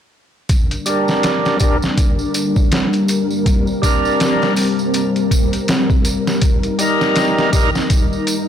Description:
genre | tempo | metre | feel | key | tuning
trip hop | 81 BPM | 4/4 | swing 59% on 16ths | G minor | A4 = 441 Hz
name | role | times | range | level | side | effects
string machine, cellos | sustained chords | 0.5-8.5 s | G3 to Bb4 | -19 LUFS | left 1 dB | ensemble chorus
trip hop sampler-style drum kit | drums | 0.5-8.5 s | hi-hat, kick drum, snare drum | -17 LUFS | equal | none
tambourine | percussion | 0.5-8.5 s | none | -28 LUFS | right 3 dB | none
overdriven tonewheel organ | accompaniment | 0.9-7.7 s | G3 to Bb4 | -18 LUFS | right 1 dB | slow rotary speaker, tremolo, low-pass filter, tape echo
room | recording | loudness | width
moderate echo chamber reverb, RT60 1.8 s, digital ambience | blown-out, overdriven recording, overdrive | -14 LUFS | side -9 dB against mid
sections
0.5-8.5 A section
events
filter sweep on tonewheel organ 0.5-8.5; filter sweep on string machine 0.5-8.5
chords
0.5 Gm; 6.4 Eb/G

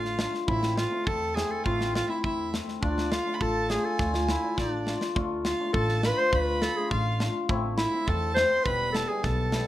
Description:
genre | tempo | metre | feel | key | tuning
klezmer | 103 BPM | 2/4 | straight | D dorian sharp4 | A4 = 439 Hz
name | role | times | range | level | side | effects
breathy clarinet | melody | 0.0-9.7 s | D4 to C5 | -28 LUFS | equal | none
warm violin | second line | 0.0-9.7 s | D5 to C6 | -34 LUFS | right 3 dB | none
upright bass | bass | 0.0-9.6 s | E1 to E2 | -31 LUFS | right 1 dB | none
tight metal drum kit | drums | 0.0-9.7 s | kick drum, snare drum | -32 LUFS | equal | none
cimbalom | accompaniment | 0.2-9.7 s | G3 to F4 | -32 LUFS | left 4 dB | none
room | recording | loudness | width
moderate studio reverb, RT60 0.6 s | none | -24 LUFS | side -14 dB against mid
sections
0.0-5.2 A section; 5.2-9.7 B section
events
drum fill 4.6-5.2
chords
0.5 Am; 2.8 Dm; 7.5 Am; 8.7 Em

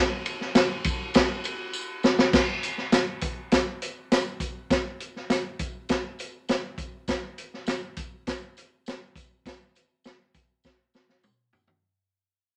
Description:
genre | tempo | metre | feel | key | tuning
soul | 101 BPM | 4/4 | straight | none | none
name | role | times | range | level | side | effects
vintage drum kit | drums | 0.3-11.8 s | crash cymbal, hi-hat, kick drum, ride cymbal, snare drum, toms | -26 LUFS | equal | none
tambourine | percussion | 0.3-11.7 s | none | -42 LUFS | equal | none
room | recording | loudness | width
moderate studio reverb, RT60 0.6 s | none | -27 LUFS | mono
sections
0.0-2.3 A section; 2.3-11.8 B section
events
drum fill 1.7-2.3, 10.6-11.8; fade-out 2.3-11.8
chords
none

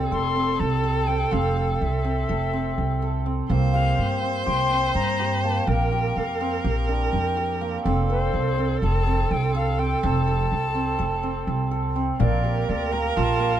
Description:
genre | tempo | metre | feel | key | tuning
contemporary instrumental, chamber music in an uneven meter | 248 BPM (eighths) | 9/8 | straight | unclear | A4 = 440 Hz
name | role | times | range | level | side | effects
rich viola | second line | 0.0-13.6 s | A4 to C5 | -29 LUFS | right 3 dB | none
hammered dulcimer | arpeggios | 0.0-13.6 s | Bb3 to A4 | -27 LUFS | right 1 dB | none
upright bass | bass | 0.0-13.6 s | F1 to G2 | -24 LUFS | right 1 dB | none
breathy silver concert flute | melody | 0.1-13.6 s | C5 to C6 | -28 LUFS | left 4 dB | none
frame drum | percussion | 12.2-13.1 s | none | -27 LUFS | left 5 dB | none
room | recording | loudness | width
light reverb | dark, warm production | -21 LUFS | side -10 dB against mid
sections
0.0-12.2 A section; 12.2-13.6 B section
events
none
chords
0.0 Fmaj7; 3.5 C7sus4; 5.7 Bb6; 7.9 F; 12.2 Gm7/Bb

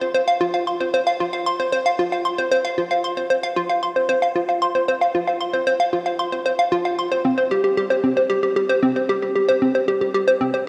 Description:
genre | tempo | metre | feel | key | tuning
ambient | 114 BPM | 4/4 | straight | unclear | A4 = 440 Hz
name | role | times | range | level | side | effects
hollow square pluck | solo | 0.0-10.6 s | C4 to C6 | -20 LUFS | equal | chorus, tape echo
room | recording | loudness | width
wet plate reverb, RT60 3.7 s | worn, warbling old tape, cassette tape, warbly pitch drift | -20 LUFS | mono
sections
0.0-10.7 A section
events
none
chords
none

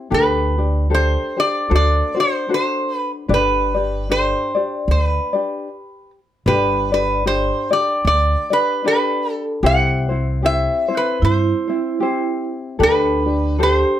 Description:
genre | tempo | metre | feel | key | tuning
Hawaiian | 76 BPM | 4/4 | swing 57% on 8ths | G major | A4 = 442 Hz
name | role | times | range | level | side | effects
tenor ukulele | accompaniment | 0.0-14.0 s | C4 to D5 | -22 LUFS | left 4 dB | none
metal-body resonator slide guitar | melody | 0.1-14.0 s | B4 to F#5 | -19 LUFS | right 1 dB | none
upright bass | bass | 0.1-13.8 s | G1 to G2 | -19 LUFS | right 1 dB | none
vibraphone with medium mallets | second line | 11.2-14.0 s | D4 to G4 | -21 LUFS | right 5 dB | none
room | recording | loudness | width
moderate studio reverb, RT60 0.5 s | none | -16 LUFS | side -11 dB against mid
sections
0.0-6.5 A section; 6.5-14.0 A section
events
stop 5.7-6.5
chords
0.1 D7sus4; 1.7 D7; 3.3 G; 9.6 C; 12.8 D7sus4

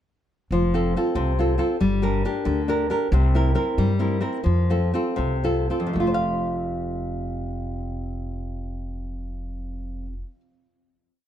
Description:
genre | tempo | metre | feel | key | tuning
italian folk, Italian serenade | 76-93 BPM (dotted quarters) | 6/8 | rubato | F major | A4 = 439 Hz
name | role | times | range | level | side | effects
nylon-string guitar | accompaniment | 0.5-10.4 s | F2 to F5 | -24 LUFS | left 1 dB | none
upright bass | bass | 0.5-10.2 s | F1 to G2 | -25 LUFS | equal | none
room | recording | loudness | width
light reverb | none | -21 LUFS | side -10 dB against mid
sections
0.5-5.9 A section; 5.9-9.1 final chord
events
slowing down 3.1-5.9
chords
0.5 F; 1.8 Gm; 3.1 C7; 4.5 F

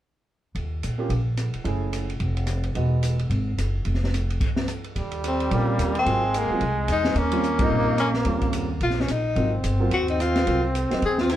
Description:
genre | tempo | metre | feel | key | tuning
jazz, small-group swing and bop | 218 BPM | 4/4 | swing 59% on 8ths | Eb mixolydian | A4 = 441 Hz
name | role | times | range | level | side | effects
upright bass | bass | 0.5-11.4 s | E1 to Bb2 | -25 LUFS | equal | none
open jazz drum kit | drums | 0.6-11.4 s | crash cymbal, hi-hat, kick drum, ride cymbal, rim click, snare drum | -29 LUFS | equal | none
warm concert grand piano | accompaniment | 1.0-3.2, 5.5-11.0 s | Gb3 to Ab4 | -29 LUFS | right 3 dB | none
breathy trumpet | second line | 5.0-11.4 s | G3 to C4 | -27 LUFS | right 1 dB | none
clear tenor saxophone | melody | 5.3-11.4 s | Bb3 to Ab4 | -25 LUFS | left 2 dB | plate reverb
room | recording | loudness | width
wet club reverb, RT60 0.6 s | heard from further back in the room | -21 LUFS | side -12 dB against mid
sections
0.6-5.0 A section; 5.0-11.4 B section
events
band accent 7.6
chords
0.6 Eb5; 1.7 Gbm7; 2.2 N.C.; 2.8 Emaj9; 3.9 N.C.; 5.0 Eb13; 6.1 Ab13; 7.2 Eb13; 9.4 Ab13

